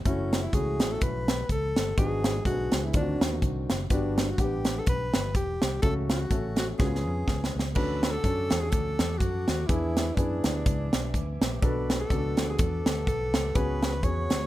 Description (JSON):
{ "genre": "uptempo gospel", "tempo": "124 BPM", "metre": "4/4", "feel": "swing 56% on 8ths", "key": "F# minor", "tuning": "A4 = 440 Hz", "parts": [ { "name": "fingered electric bass", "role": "bass", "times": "0.0-14.5 s", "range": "E1 to F#2", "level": "-31 LUFS", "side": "equal", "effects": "none" }, { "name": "warm tenor saxophone", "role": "melody", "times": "0.1-14.5 s", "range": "C#4 to C#5", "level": "-32 LUFS", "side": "equal", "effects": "none" }, { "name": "warm concert grand piano", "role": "accompaniment", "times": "0.1-14.5 s", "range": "G2 to F#5", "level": "-33 LUFS", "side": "left 1 dB", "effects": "none" }, { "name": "crisp fusion drum kit", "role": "drums", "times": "0.1-14.4 s", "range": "crash cymbal, hi-hat, kick drum, snare drum", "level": "-27 LUFS", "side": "equal", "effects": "none" }, { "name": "mellow tonewheel organ", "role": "sustained chords", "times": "7.7-14.5 s", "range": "A4 to D6", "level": "-42 LUFS", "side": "right 3 dB", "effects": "slow rotary speaker" } ], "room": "small room ambience", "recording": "rough home demo mix", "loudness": "-24 LUFS", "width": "side -15 dB against mid", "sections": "0.0-14.5 A section", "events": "drum fill 6.8-7.8", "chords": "0.1 F#m7; 2.0 G#m7b5; 2.9 D7b9; 3.9 Gmaj7; 5.8 F#m/C#; 6.8 C#7; 7.8 Dmaj7; 9.7 E7; 11.6 Bm7; 13.6 C#7sus4", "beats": "| 0.06 0.54 1.02 1.50 | 1.98 2.46 2.94 3.43 | 3.91 4.39 4.87 5.35 | 5.83 6.32 6.80 7.28 | 7.76 8.24 8.72 9.21 | 9.69 10.17 10.65 11.14 | 11.62 12.10 12.59 13.07 | 13.55 14.03" }